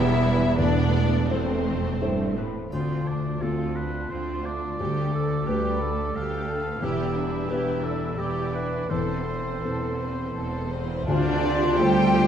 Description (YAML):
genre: cinematic, emotional film score for orchestra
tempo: 81-90 BPM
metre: 3/4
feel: rubato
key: D dorian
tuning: A4 = 440 Hz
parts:
  - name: rich symphonic violin section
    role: melody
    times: 0.0-12.3 s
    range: A4 to G5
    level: -35 LUFS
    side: left 6 dB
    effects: none
  - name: rich symphonic violin section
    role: second line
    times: 0.0-12.3 s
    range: C4 to C5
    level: -34 LUFS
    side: left 2 dB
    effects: none
  - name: felt-muted upright piano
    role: accompaniment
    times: 0.0-12.3 s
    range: E1 to C5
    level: -30 LUFS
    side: left 1 dB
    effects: none
  - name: rich symphonic viola section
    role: accompaniment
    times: 0.0-12.3 s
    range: G3 to C5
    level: -33 LUFS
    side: right 2 dB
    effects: none
  - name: concert harp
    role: arpeggios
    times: 0.0-12.3 s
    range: D3 to B5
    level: -33 LUFS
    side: left 5 dB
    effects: none
  - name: rich studio cello section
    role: bass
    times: 0.0-12.3 s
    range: D2 to G3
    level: -30 LUFS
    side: right 2 dB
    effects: none
  - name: rich symphonic double bass section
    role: bass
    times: 0.0-12.3 s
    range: E1 to D2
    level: -30 LUFS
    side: right 3 dB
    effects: none
  - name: clear oboe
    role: second line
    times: 2.7-12.3 s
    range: A4 to F5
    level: -34 LUFS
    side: right 1 dB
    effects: none
  - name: warm clarinet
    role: second line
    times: 2.7-12.3 s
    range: F4 to B4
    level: -32 LUFS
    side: right 1 dB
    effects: none
  - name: triangle, cymbal swell and tam-tam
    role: percussion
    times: 2.7-12.3 s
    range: none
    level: -37 LUFS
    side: equal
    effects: none
  - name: mellow small flute group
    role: second line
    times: 11.1-12.3 s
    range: D5 to G5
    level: -28 LUFS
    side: right 1 dB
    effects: none
  - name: mellow French horn section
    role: sustained chords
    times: 11.1-12.3 s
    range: C4 to F4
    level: -28 LUFS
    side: equal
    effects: none
room: moderate scoring stage reverb, RT60 1.9 s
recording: none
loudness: -23 LUFS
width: side -8 dB against mid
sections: 0.0-2.7 A section; 2.7-11.1 B section; 11.1-12.3 A section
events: band accent 11.1-11.8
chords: 0.0 Em7; 0.6 Amadd9/E; 2.7 Dm7; 4.8 Gadd9/D; 6.8 Em7; 8.9 Amadd9/E; 11.1 Dm7